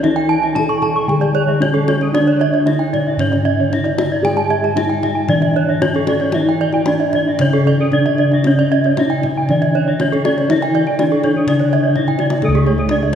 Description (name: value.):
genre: Balinese gamelan.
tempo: 114-128 BPM.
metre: 4/4.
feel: straight.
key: C# pelog.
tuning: A4 = 440 Hz.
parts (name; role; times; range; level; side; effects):
gamelan-type bronze metallophone; melody; 0.0-13.2 s; A3-40c to A4-40c; -19 LUFS; left 2 dB; none.
gamelan-type bronze metallophone; accompaniment; 0.0-13.2 s; C#3 to A3-40c; -26 LUFS; right 2 dB; none.
gamelan-type bronze metallophone; arpeggios; 0.0-13.0 s; A4-40c to C#6; -21 LUFS; equal; none.
gamelan-type bossed gongs; bass; 0.0-13.2 s; C#2 to A4-40c; -18 LUFS; left 1 dB; none.
kendang; percussion; 0.0-13.2 s; none; -26 LUFS; left 4 dB; none.
gamelan-type bronze metallophone; arpeggios; 0.2-13.1 s; G#4-45c to C#6; -21 LUFS; right 4 dB; none.
room: wet cathedral reverb, RT60 4.5 s.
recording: recorded in a church or concert hall.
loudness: -13 LUFS.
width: side -8 dB against mid.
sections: 0.0-12.4 A section.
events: drum fill 12.1-12.4.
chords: none.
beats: | 0.03 0.56 1.09 1.61 | 2.14 2.67 3.19 3.72 | 4.25 4.77 5.30 5.82 | 6.35 6.88 7.40 7.93 | 8.46 8.98 9.49 10.00 | 10.50 10.99 11.48 11.96 | 12.43 12.90.